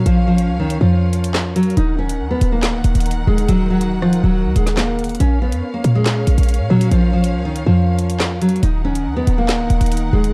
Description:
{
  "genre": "hip hop, drill",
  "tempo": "140 BPM",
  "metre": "4/4",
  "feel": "half-time",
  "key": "Bb minor",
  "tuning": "A4 = 442 Hz",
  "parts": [
    { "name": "nylon-string guitar", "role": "melody", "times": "0.0-10.3 s", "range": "Eb3 to Eb4", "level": "-21 LUFS", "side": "equal", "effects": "digital delay" },
    { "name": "warm studio string section", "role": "sustained chords", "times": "0.0-10.3 s", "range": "Eb3 to Gb5", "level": "-30 LUFS", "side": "equal", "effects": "none" },
    { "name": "short 808-style bass", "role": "bass", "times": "0.0-10.3 s", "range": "Db1 to Bb2", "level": "-20 LUFS", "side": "equal", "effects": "none" },
    { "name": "drill drum kit", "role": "drums", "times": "0.1-10.3 s", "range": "handclaps, hi-hat, rim click, snare drum", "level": "-26 LUFS", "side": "equal", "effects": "none" }
  ],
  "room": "studio reverb",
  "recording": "dark, warm production",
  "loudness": "-17 LUFS",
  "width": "mono",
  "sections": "0.0-10.3 A section",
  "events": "none",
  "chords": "0.0 Bbm; 1.8 Ebm; 5.2 Bbm; 8.6 Ebm"
}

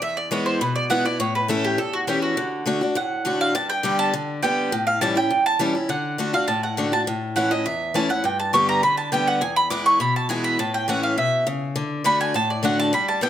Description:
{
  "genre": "bluegrass",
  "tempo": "204 BPM",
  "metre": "4/4",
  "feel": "straight",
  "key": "D major",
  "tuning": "A4 = 440 Hz",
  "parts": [
    { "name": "mandolin", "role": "melody", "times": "0.0-13.3 s", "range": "F#4 to D6", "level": "-21 LUFS", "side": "right 2 dB", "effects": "none" },
    { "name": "picked steel-string acoustic guitar", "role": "accompaniment", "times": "0.0-13.3 s", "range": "E2 to G4", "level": "-23 LUFS", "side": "left 2 dB", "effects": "none" }
  ],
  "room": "light reverb",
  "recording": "close, detailed microphones",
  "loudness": "-19 LUFS",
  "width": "side -10 dB against mid",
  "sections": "0.0-13.3 A section",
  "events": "mandolin solo 0.0-13.3",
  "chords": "0.0 E; 1.2 A; 2.4 D; 3.5 G; 4.7 A7; 5.9 D; 7.1 A; 8.2 G; 9.4 E; 10.6 A; 11.8 D"
}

